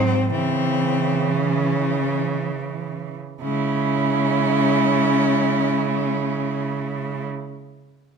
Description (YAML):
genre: classical, lyrical piece for cello ensemble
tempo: free time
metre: none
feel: none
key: C# minor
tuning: A4 = 441 Hz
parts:
  - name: rich cello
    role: melody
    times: 0.0-7.2 s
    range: B#3 to C#4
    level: -24 LUFS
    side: left 6 dB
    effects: none
  - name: rich cello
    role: second line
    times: 0.0-7.2 s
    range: E3 to E4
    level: -25 LUFS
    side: right 12 dB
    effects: none
  - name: warm cello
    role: accompaniment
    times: 0.0-7.2 s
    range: E3 to B#3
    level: -27 LUFS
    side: left 1 dB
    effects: none
  - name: rich cello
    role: bass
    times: 0.0-7.2 s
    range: G#2 to C#3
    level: -25 LUFS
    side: right 5 dB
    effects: none
room: moderate recital hall reverb, RT60 1.3 s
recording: close, detailed microphones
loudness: -19 LUFS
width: side -6 dB against mid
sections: 0.0-3.4 A section; 3.4-6.5 B section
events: slowing down 0.0-3.4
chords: 0.3 C#m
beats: free time